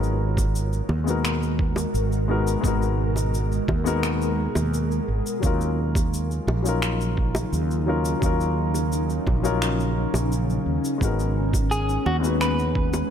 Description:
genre	sunset chillout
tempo	86 BPM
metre	4/4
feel	straight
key	G# minor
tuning	A4 = 440 Hz
part	warm baby grand piano	accompaniment	0.0-13.1 s	F#3 to B4	-28 LUFS	moving between left 6 dB and right 3 dB	auto-pan, low-pass filter, ping-pong delay
part	ethereal airy pad	sustained chords	0.0-13.1 s	B2 to A#4	-29 LUFS	equal	ensemble chorus, built-in reverb
part	mellow fretless electric bass	bass	0.0-13.0 s	G#1 to D#2	-24 LUFS	right 1 dB	none
part	electronic shaker and finger snaps	drums	0.0-13.1 s	none	-32 LUFS	left 1 dB	none
part	electronic kick drum	drums	0.4-12.9 s	none	-25 LUFS	right 1 dB	overdrive
part	bongos	percussion	0.4-13.1 s	none	-31 LUFS	equal	none
part	clean electric guitar	melody	11.7-13.1 s	F#4 to B4	-27 LUFS	equal	ping-pong delay
room	light reverb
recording	none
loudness	-21 LUFS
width	side -8 dB against mid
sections	0.0-13.1 A section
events	none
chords	0.0 G#m9; 5.4 D#m9; 11.0 G#m9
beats	0.55 1.25 1.94 | 2.64 3.34 4.04 4.73 | 5.43 6.13 6.83 7.52 | 8.22 8.92 9.62 10.31 | 11.01 11.71 12.41

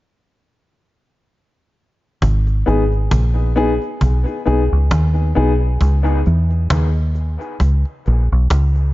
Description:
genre	dub reggae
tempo	67 BPM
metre	4/4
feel	swing 55% on 16ths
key	G# minor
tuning	A4 = 440 Hz
part	deep dub fingered electric bass	bass	2.2-8.9 s	G#1 to E2	-14 LUFS	equal	none
part	cajon	drums	2.2-8.9 s	none	-22 LUFS	equal	none
part	dark upright piano	stabs	2.7-5.5 s	B3 to G#4	-21 LUFS	left 2 dB	dub echo
room	studio ambience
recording	echo-heavy mix, nothing above 7.5 kHz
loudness	-14 LUFS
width	side -18 dB against mid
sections	0.0-2.2 A section; 2.2-8.9 B section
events	drum fill 0.4-2.2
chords	0.0 N.C.; 2.2 G#m; 5.8 C#m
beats	0.42 1.32 | 2.22 3.12 4.01 4.91 | 5.81 6.71 7.60 8.50

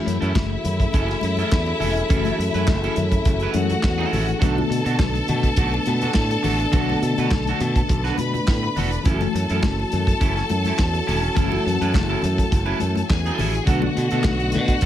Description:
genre	disco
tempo	104 BPM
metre	4/4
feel	straight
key	F# minor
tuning	A4 = 440 Hz
part	clear studio string section	second line	0.0-14.9 s	E4 to B5	-26 LUFS	left 3 dB	none
part	tine electric piano	accompaniment	0.0-14.9 s	D3 to F#4	-28 LUFS	left 4 dB	medium stereo tremolo
part	dark French horn section	sustained chords	0.0-14.9 s	F#3 to A4	-28 LUFS	right 1 dB	stereo widening
part	electric guitar at the edge of break-up	accompaniment	0.1-14.9 s	C#4 to B4	-30 LUFS	right 6 dB	wide subtle chorus
part	modern bright fingered electric bass	bass	0.1-14.9 s	E1 to B2	-24 LUFS	right 1 dB	none
part	warm soul drum kit	drums	0.1-14.9 s	handclaps, hi-hat, kick drum, snare drum	-22 LUFS	equal	none
part	congas	percussion	0.4-14.9 s	none	-31 LUFS	left 5 dB	none
room	small room ambience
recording	none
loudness	-18 LUFS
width	side -11 dB against mid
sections	0.0-14.9 A section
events	none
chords	0.0 F#m7; 4.4 Bm7; 9.1 F#m7; 13.7 Bm7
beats	0.35 0.93 1.51 | 2.09 2.67 3.26 3.84 | 4.42 5.00 5.58 6.16 | 6.74 7.32 7.90 8.48 | 9.06 9.63 10.21 10.79 | 11.37 11.95 12.52 13.10 | 13.68 14.25 14.83

